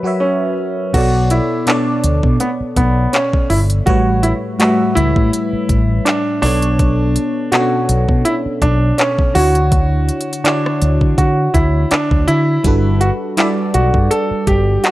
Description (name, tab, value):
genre	contemporary R&B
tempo	82 BPM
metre	4/4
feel	swing 54% on 16ths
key	B minor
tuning	A4 = 440 Hz
part	warm baby grand piano	melody	0.0-14.9 s	B3 to B4	-17 LUFS	right 1 dB	none
part	FM electric piano	accompaniment	0.0-14.9 s	A2 to E5	-19 LUFS	equal	chorus, phaser
part	mellow fretless electric bass	bass	0.9-14.8 s	G1 to D3	-15 LUFS	equal	none
part	smooth R&B drum kit	drums	0.9-14.9 s	crash cymbal, handclaps, hi-hat, kick drum, rim click	-17 LUFS	equal	overdrive
room	digital ambience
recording	dry, gritty hardware recording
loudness	-12 LUFS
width	side -16 dB against mid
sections	0.9-14.9 A section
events	break 0.0-0.9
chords	0.0 F#7sus4; 0.9 Bm9; 3.9 A7; 6.4 Bm7; 9.4 Dmaj7; 12.6 Gmaj7